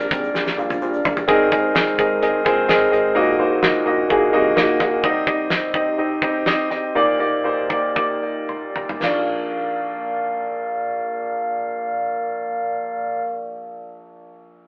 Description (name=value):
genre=piano-driven pop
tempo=109-128 BPM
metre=4/4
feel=straight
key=Bb mixolydian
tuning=A4 = 440 Hz
part: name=warm concert grand piano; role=accompaniment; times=0.0-14.7 s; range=Bb1 to C6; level=-21 LUFS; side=equal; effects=none
part: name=glass harmonica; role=sustained chords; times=0.0-13.2 s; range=Ab3 to Gb5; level=-28 LUFS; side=equal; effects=none
part: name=chorused synth bass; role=bass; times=0.0-5.0 s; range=Ab1 to C2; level=-31 LUFS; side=equal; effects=none
part: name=egg shaker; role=percussion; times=0.0-1.3 s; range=none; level=-54 LUFS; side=equal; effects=none
part: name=damped 70s drum kit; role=drums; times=0.1-9.2 s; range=crash cymbal, hi-hat, kick drum, snare drum, toms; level=-25 LUFS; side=equal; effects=none
room=wet studio reverb, RT60 0.6 s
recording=band playing live in one room, telephone sound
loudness=-20 LUFS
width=mono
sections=0.0-1.3 A section; 1.3-9.0 B section; 9.0-13.4 C section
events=grand piano solo 0.0-1.3; drum fill 0.3-1.3, 8.5-9.0; slowing down 5.0-9.0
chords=0.0 Bb6; 1.3 Abadd9; 3.2 Ebm/Bb; 5.0 Cm; 6.9 Ebmaj7/Bb; 9.0 Bb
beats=0.35 0.82 | 1.28 1.75 2.22 2.69 | 3.16 3.63 4.10 4.57 | 5.03 5.50 5.98 6.46 | 6.95 7.45 7.96 8.49 | 9.03 9.58 10.13 10.69 | 11.24 11.79 12.35 12.90